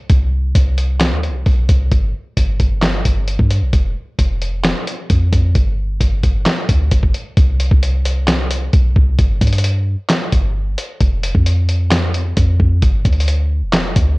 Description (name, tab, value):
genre	hip hop, trap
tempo	132 BPM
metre	4/4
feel	half-time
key	unclear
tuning	A4 = 439 Hz
part	clean 808-style bass	bass	0.1-14.2 s	F1 to G2	-16 LUFS	equal	none
part	lo-fi sampler-style drum kit	drums	0.1-14.1 s	handclaps, hi-hat, kick drum, snare drum	-15 LUFS	equal	none
room	little or no reverb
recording	worn, warbling old tape, cassette tape, warbly pitch drift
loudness	-13 LUFS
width	side -24 dB against mid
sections	0.0-7.4 A section; 7.4-14.2 B section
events	none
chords	none